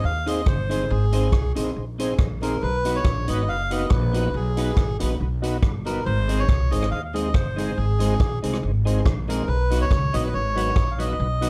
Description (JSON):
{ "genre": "ska", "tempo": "140 BPM", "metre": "4/4", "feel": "swing 55% on 8ths", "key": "unclear", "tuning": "A4 = 440 Hz", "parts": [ { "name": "melodica", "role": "melody", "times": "0.0-11.5 s", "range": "Ab4 to F5", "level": "-30 LUFS", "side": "equal", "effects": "slapback echo" }, { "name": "electric guitar through a small old amp", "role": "accompaniment", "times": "0.0-11.5 s", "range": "Gb3 to C5", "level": "-33 LUFS", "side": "equal", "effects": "none" }, { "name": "upright bass", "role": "bass", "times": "0.0-11.5 s", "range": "Gb1 to Eb2", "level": "-26 LUFS", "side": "equal", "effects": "none" }, { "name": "tonewheel organ", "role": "stabs", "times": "0.3-11.5 s", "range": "Eb4 to C5", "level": "-32 LUFS", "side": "equal", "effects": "chorus vibrato, slow rotary speaker, slapback echo" }, { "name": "swinging big-band drum kit", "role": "drums", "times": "0.3-11.5 s", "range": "hi-hat, kick drum, rim click", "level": "-26 LUFS", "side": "equal", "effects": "none" } ], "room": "light reverb", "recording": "dark, warm production", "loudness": "-23 LUFS", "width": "mono", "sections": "0.0-11.5 A section", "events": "none", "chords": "0.0 Ab; 2.6 Cb; 6.1 Ab; 9.5 Cb" }